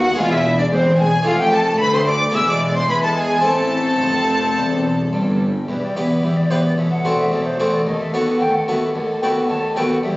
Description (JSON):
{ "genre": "classical, baroque-style concerto movement with solo episodes", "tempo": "110 BPM", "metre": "4/4", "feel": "straight", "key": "A minor", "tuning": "A4 = 440 Hz", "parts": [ { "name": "silver concert flute", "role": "melody", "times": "0.0-10.1 s", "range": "B4 to E6", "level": "-22 LUFS", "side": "equal", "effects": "none" }, { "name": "warm chamber violin section", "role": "melody", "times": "0.0-10.2 s", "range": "B4 to E6", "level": "-25 LUFS", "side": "equal", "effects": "none" }, { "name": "warm studio violin section", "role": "second line", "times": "0.0-10.2 s", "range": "C4 to E5", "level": "-25 LUFS", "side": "left 1 dB", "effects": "none" }, { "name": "harpsichord", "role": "accompaniment", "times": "0.0-10.2 s", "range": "D2 to B4", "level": "-21 LUFS", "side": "equal", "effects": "none" }, { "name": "warm chamber cello section", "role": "bass", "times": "0.0-10.1 s", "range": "D2 to E3", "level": "-26 LUFS", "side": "equal", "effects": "none" }, { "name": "warm chamber double bass section", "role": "bass", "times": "0.0-10.1 s", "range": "E1 to E2", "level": "-26 LUFS", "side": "equal", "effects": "none" }, { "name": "dark studio viola section", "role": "accompaniment", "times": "0.2-10.2 s", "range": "F#3 to C4", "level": "-24 LUFS", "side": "left 1 dB", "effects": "none" } ], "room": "wet recital hall reverb, RT60 1.4 s", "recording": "recorded on a phone in the room, club reverb, compression, nothing above 7.8 kHz", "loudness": "-15 LUFS", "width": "side -20 dB against mid", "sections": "0.0-5.7 A section; 5.7-10.2 B section", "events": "none", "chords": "0.2 E; 1.3 Dm/F; 2.3 E; 3.5 Am; 5.7 Em; 6.8 F#m7b5/E; 7.9 B7/D#", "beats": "0.18 0.72 | 1.26 1.80 2.34 2.89 | 3.45 4.01 4.57 5.13 | 5.68 6.23 6.77 7.32 | 7.86 8.40 8.95 9.49 | 10.03" }